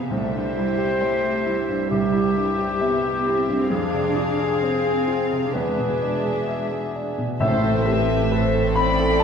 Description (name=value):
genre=cinematic, emotional film score for orchestra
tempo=66 BPM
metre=4/4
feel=rubato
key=C major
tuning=A4 = 441 Hz
part: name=dark studio violin section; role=melody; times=0.0-9.2 s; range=A4 to F5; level=-32 LUFS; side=left 4 dB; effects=none
part: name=clear baby grand piano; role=accompaniment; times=0.0-9.2 s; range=C2 to B5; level=-25 LUFS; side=equal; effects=none
part: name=dark studio viola section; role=accompaniment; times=0.0-9.2 s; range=C3 to C5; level=-28 LUFS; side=right 3 dB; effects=none
part: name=warm studio cello section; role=bass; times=0.0-9.2 s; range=A2 to D4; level=-27 LUFS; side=right 3 dB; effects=none
part: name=warm clarinet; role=second line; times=0.1-6.9 s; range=G4 to C5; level=-24 LUFS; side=left 4 dB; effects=none
part: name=warm studio violin section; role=second line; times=7.4-9.2 s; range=E5 to B5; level=-27 LUFS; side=left 4 dB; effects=none
part: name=warm studio double bass section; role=bass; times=7.4-9.2 s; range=A1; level=-26 LUFS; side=right 2 dB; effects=none
part: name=timpani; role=percussion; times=7.4-8.7 s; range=A2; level=-27 LUFS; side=equal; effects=none
room=wet concert hall reverb, RT60 2.0 s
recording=heard from further back in the room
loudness=-19 LUFS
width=side -7 dB against mid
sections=0.0-7.4 A section; 7.4-9.2 B section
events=none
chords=0.1 C; 3.7 Fm; 5.5 E7; 7.4 Amadd9